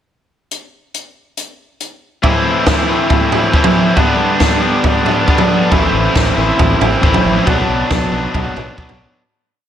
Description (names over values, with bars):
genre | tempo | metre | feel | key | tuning
indie rock | 138 BPM | 4/4 | straight | A dorian | A4 = 441 Hz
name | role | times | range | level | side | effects
compact cocktail drum kit | drums | 0.5-9.0 s | hi-hat, kick drum, snare drum, toms | -15 LUFS | equal | none
overdriven electric guitar | riff | 2.2-9.2 s | G2 to E4 | -16 LUFS | left 4 dB | slapback echo
overdriven electric guitar | riff | 2.2-9.2 s | E3 to E4 | -17 LUFS | right 4 dB | lush chorus, slapback echo
fuzz fingered electric bass | bass | 5.7-9.1 s | A1 to B1 | -20 LUFS | equal | overdrive
room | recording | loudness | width
wet recital hall reverb, RT60 1.7 s, small room ambience | big arena sound | -11 LUFS | side -10 dB against mid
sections
0.5-2.2 pickup bar; 2.2-9.2 interlude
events
fade-out 7.5-9.2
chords
0.5 N.C.; 2.2 Am; 4.0 G; 5.7 Am; 7.5 Bm